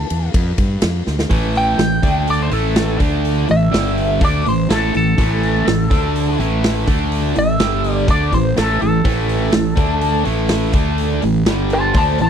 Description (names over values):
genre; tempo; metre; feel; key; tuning
blues rock power trio and southern rock; 124 BPM; 4/4; straight; A minor; A4 = 440 Hz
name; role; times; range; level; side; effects
lightly driven lead guitar; melody; 0.0-12.3 s; A4 to A5; -20 LUFS; equal; wah, slapback echo
fuzz fingered electric bass; bass; 0.0-12.3 s; G1 to G2; -20 LUFS; equal; overdrive
big rock drum kit; drums; 0.1-12.3 s; hi-hat, kick drum, ride cymbal, snare drum; -20 LUFS; equal; none
sludgy distorted guitar; riff; 1.3-12.3 s; G2 to D4; -18 LUFS; right 1 dB; overdrive
room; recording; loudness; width
little or no reverb; dry, close 1970s-style studio recording; -14 LUFS; side -8 dB against mid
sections
0.0-1.3 A section; 1.3-12.3 B section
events
lead electric guitar solo 0.0-1.3; drum fill 1.1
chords
0.0 A7(no3); 1.3 A5; 2.0 D5; 2.5 A5; 3.0 D5; 3.5 A5; 3.7 G5; 4.2 A5; 5.9 D5; 6.4 A5; 6.9 D5; 7.4 A5; 7.6 G5; 8.1 A5; 9.8 D5; 10.3 A5; 10.8 D5; 11.2 A5; 11.5 G5